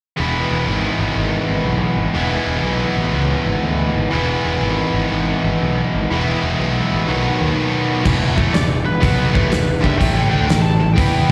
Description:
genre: blues rock power trio and southern rock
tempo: 122 BPM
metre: 4/4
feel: swing 66% on 8ths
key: E major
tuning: A4 = 439 Hz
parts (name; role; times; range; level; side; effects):
- distorted electric guitar; riff; 0.2-11.3 s; E2 to E4; -21 LUFS; equal; overdrive, slapback echo
- fuzz picked electric bass; bass; 0.2-11.3 s; E1 to E2; -22 LUFS; equal; overdrive
- big rock drum kit; drums; 8.1-11.3 s; crash cymbal, hi-hat, kick drum, snare drum; -20 LUFS; equal; none
- overdriven slide guitar; melody; 8.5-11.3 s; B4 to A5; -25 LUFS; equal; slapback echo, analog delay
room: light reverb, small room ambience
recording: live gig heard through the venue's PA, recital hall reverb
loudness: -18 LUFS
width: mono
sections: 0.2-8.1 A section; 8.1-11.3 B section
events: none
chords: 0.2 E; 7.1 B; 8.1 E5; 10.0 A5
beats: | 0.19 0.68 1.17 1.67 | 2.16 2.65 3.14 3.63 | 4.13 4.62 5.11 5.60 | 6.09 6.58 7.07 7.56 | 8.05 8.54 9.03 9.52 | 10.01 10.49 10.98

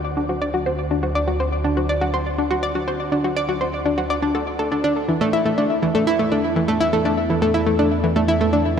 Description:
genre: ambient, sequencer-driven space music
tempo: 122 BPM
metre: 4/4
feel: straight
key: unclear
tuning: A4 = 440 Hz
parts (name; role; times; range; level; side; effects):
- analog drone; bass; 0.0-8.8 s; D2 to E2; -27 LUFS; equal; chorus
- analog pluck; riff; 0.2-8.6 s; E3 to D5; -18 LUFS; equal; chorus, analog delay, shimmer reverb
room: wet cathedral reverb, RT60 6.0 s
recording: in a vast, echoing space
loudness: -18 LUFS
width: side -7 dB against mid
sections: 0.0-8.8 A section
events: none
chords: 0.0 D; 5.0 E5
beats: 0.04 0.54 | 1.03 1.52 2.01 2.50 | 3.00 3.49 3.98 4.47 | 4.96 5.46 5.95 6.44 | 6.93 7.42 7.91 8.41

